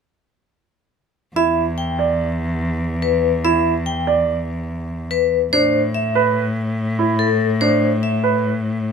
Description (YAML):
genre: classical, minimalist pattern music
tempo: 144 BPM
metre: 5/4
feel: straight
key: E minor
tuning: A4 = 443 Hz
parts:
  - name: vibraphone with hard mallets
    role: melody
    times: 1.4-8.3 s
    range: A4 to G5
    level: -19 LUFS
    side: left 4 dB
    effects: none
  - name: clear concert grand piano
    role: arpeggios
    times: 1.4-8.5 s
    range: D4 to D5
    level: -19 LUFS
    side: right 6 dB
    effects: none
  - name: rich cello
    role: bass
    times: 1.4-8.9 s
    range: E2 to A2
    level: -21 LUFS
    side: left 1 dB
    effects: none
room: light reverb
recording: close, detailed microphones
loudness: -16 LUFS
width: side -6 dB against mid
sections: 1.4-8.9 A section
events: none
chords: 1.4 E7(no3); 5.5 Asus2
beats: | 1.36 1.78 2.20 2.61 3.03 | 3.45 3.86 4.28 4.70 5.11 | 5.53 5.95 6.36 6.78 7.20 | 7.61 8.03 8.45 8.86